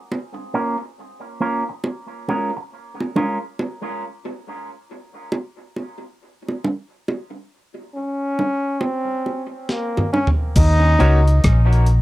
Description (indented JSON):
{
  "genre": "dub reggae",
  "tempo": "69 BPM",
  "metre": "4/4",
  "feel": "swing 63% on 16ths",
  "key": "Eb dorian",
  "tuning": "A4 = 440 Hz",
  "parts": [
    { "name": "bongos", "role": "percussion", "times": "0.1-10.4 s", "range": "none", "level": "-26 LUFS", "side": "right 2 dB", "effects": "dub echo" },
    { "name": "electric guitar with an envelope filter", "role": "accompaniment", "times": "0.5-3.4, 11.0-11.2 s", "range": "Ab3 to Bb4", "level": "-26 LUFS", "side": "right 2 dB", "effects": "low-pass filter, dub echo" },
    { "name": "bright trombone", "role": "melody", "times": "7.9-11.4 s", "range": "Bb3 to Eb4", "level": "-22 LUFS", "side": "equal", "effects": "low-pass filter, dub echo" },
    { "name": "breakbeat sampler-style drum kit", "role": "drums", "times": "9.7-12.0 s", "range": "crash cymbal, hi-hat, kick drum, rim click, snare drum, toms", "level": "-19 LUFS", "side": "equal", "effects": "none" },
    { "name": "vintage muted fingered electric bass", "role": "bass", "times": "10.6-12.0 s", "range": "Bb1 to Eb2", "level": "-13 LUFS", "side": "equal", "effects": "tube saturation" },
    { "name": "clear grand piano", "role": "stabs", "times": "11.0-11.2 s", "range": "Eb4 to Db5", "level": "-26 LUFS", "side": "left 5 dB", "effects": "low-pass filter, dub echo" }
  ],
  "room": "little or no reverb",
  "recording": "dry, close 1970s-style studio recording",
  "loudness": "-18 LUFS",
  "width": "side -17 dB against mid",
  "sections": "0.0-10.6 A section; 10.6-12.0 B section",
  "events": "break 0.0-10.6; drum fill 9.7-10.6",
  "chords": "0.1 Bbm; 1.8 Bbm7; 3.6 N.C.; 10.6 Ebm7",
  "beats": "| 0.10 0.98 1.85 2.72 | 3.59 4.46 5.33 6.21 | 7.08 7.95 8.82 9.69 | 10.56 11.43"
}